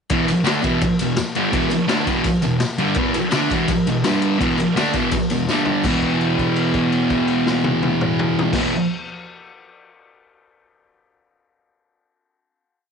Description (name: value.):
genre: garage rock duo or trio.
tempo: 167 BPM.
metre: 4/4.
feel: straight.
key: unclear.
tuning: A4 = 440 Hz.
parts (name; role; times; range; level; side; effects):
thick fuzz guitar; riff; 0.1-8.7 s; E2 to D4; -18 LUFS; equal; distortion.
raw garage drum kit; drums; 0.1-8.6 s; crash cymbal, kick drum, ride cymbal, snare drum, toms; -24 LUFS; left 2 dB; none.
tambourine; percussion; 0.3-6.0 s; none; -38 LUFS; right 14 dB; none.
room: light reverb, small room reverb.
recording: 1960s-style stereo, nothing above 10.5 kHz.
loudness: -17 LUFS.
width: side -6 dB against mid.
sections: 0.1-5.9 riff; 5.9-8.8 final chord.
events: drum fill 5.5-5.9; held note 5.9-8.5.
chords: 0.1 E5; 4.1 G5; 4.4 E5; 5.5 G5; 5.9 E5.